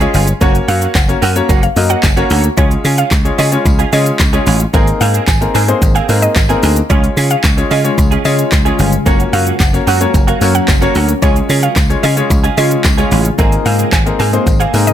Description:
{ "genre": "dance-pop", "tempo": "111 BPM", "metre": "4/4", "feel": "straight", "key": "Db major", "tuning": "A4 = 440 Hz", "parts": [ { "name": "clear concert grand piano", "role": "accompaniment", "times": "0.0-14.9 s", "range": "Ab3 to Eb5", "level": "-17 LUFS", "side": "left 3 dB", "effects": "sidechain pumping" }, { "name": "direct-recorded clean electric guitar", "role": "riff", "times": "0.0-14.9 s", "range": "Bb3 to Ab4", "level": "-20 LUFS", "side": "right 8 dB", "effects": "ensemble chorus" }, { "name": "dry thumbed slap bass", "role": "bass", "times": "0.0-14.9 s", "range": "Gb1 to Db3", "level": "-14 LUFS", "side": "equal", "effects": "sidechain pumping" }, { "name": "deep house drum kit", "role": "drums", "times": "0.0-14.9 s", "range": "handclaps, hi-hat, kick drum, shaker, snare drum", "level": "-14 LUFS", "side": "equal", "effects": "none" }, { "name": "tambourine", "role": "percussion", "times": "0.1-14.9 s", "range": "none", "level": "-31 LUFS", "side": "left 4 dB", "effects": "none" }, { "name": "mallet-like synth pluck", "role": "melody", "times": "0.7-14.9 s", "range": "Db5 to Ab5", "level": "-20 LUFS", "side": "equal", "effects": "chorus, sidechain pumping, digital delay" }, { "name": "glassy FM pad", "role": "sustained chords", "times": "7.8-14.9 s", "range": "C3 to Bb4", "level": "-22 LUFS", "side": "left 2 dB", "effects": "ensemble chorus, built-in reverb, sidechain pumping" } ], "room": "little or no reverb", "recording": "none", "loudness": "-10 LUFS", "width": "side -10 dB against mid", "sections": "0.0-14.9 A section", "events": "none", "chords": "0.4 Gb; 2.6 Db; 4.7 Abadd9; 6.9 Db; 9.1 Gb; 11.2 Db; 13.4 Abadd9" }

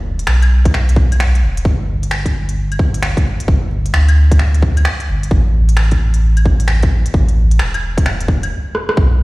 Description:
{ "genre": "future garage", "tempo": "131 BPM", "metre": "4/4", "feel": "swing 65% on 16ths", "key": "unclear", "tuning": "A4 = 440 Hz", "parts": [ { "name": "warm sub bass", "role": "bass", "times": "0.0-9.2 s", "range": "E1 to D2", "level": "-13 LUFS", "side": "equal", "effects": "sidechain pumping" }, { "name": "organic electronic drum kit", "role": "drums", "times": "0.2-9.0 s", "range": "claves, finger snaps, hi-hat, rim click", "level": "-22 LUFS", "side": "equal", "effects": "none" }, { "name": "electronic kick drum", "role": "drums", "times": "0.7-9.1 s", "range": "none", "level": "-13 LUFS", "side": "equal", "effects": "none" } ], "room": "little or no reverb", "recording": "played on a big sound system in a bare room, large studio reverb, vinyl crackle", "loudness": "-12 LUFS", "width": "side -21 dB against mid", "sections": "0.0-9.0 A section", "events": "stop 8.5-9.0; drum fill 8.7", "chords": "none" }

